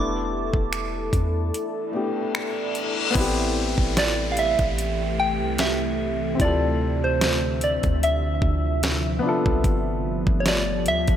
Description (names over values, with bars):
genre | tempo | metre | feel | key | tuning
contemporary R&B | 74 BPM | 4/4 | swing 54% on 16ths | A minor | A4 = 440 Hz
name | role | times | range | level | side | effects
soft synth bell | melody | 0.0-11.2 s | C5 to D6 | -26 LUFS | right 1 dB | chorus, phaser, tape echo
warm baby grand piano | accompaniment | 0.0-11.2 s | A3 to A4 | -29 LUFS | left 3 dB | none
deep dark ambient pad | sustained chords | 0.0-11.2 s | C3 to A5 | -28 LUFS | right 1 dB | chorus, built-in reverb
soft 808-style bass | bass | 0.0-11.2 s | E1 to E2 | -27 LUFS | equal | none
smooth R&B drum kit | drums | 0.5-11.2 s | crash cymbal, finger snaps, hi-hat, kick drum, snare drum | -25 LUFS | equal | none
reverse cymbal and downlifter | sound effects | 2.3-9.6 s | none | -32 LUFS | left 4 dB | none
room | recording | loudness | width
moderate lush hall reverb, RT60 2.1 s | dreamy mix soaked in reverb | -21 LUFS | side -10 dB against mid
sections
0.0-3.2 A section; 3.2-11.2 B section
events
kick muted 1.5-3.2; reverse cymbal 2.3-3.2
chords
0.0 E7sus4; 3.2 Am7; 6.4 Dm9; 9.2 G9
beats
0.72 1.53 2.34 | 3.15 3.96 4.78 5.59 | 6.40 7.21 8.02 8.83 | 9.64 10.45